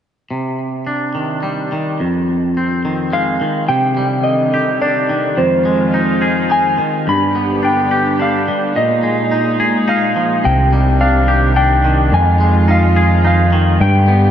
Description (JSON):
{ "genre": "rock", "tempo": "107 BPM", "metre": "3/4", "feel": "straight", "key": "C minor", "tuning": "A4 = 440 Hz", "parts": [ { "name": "twangy electric guitar", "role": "arpeggios", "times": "0.3-14.3 s", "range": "F2 to Ab4", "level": "-16 LUFS", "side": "equal", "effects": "vibrato effect, tape echo" }, { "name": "clean lap steel guitar", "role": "melody", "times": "3.1-14.3 s", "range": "C5 to B5", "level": "-17 LUFS", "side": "left 1 dB", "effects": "lush chorus, tape echo" }, { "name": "warm studio string section", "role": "sustained chords", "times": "3.7-14.3 s", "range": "Bb2 to G4", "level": "-20 LUFS", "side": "right 2 dB", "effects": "none" }, { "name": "growling fingered electric bass", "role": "bass", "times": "10.5-14.3 s", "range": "C2 to G2", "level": "-12 LUFS", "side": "equal", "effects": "overdrive" } ], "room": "wet huge ambient reverb, RT60 4.4 s", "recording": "dreamy mix soaked in reverb, nothing above 10.6 kHz", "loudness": "-12 LUFS", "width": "side -9 dB against mid", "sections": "0.3-3.7 A section; 3.7-14.3 B section", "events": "none", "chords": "0.3 Cmadd9; 2.0 Fm7; 3.7 Cmadd9; 5.4 Fm7; 7.1 G; 8.8 Bb7sus4; 10.4 Cmadd9; 12.1 Fm7" }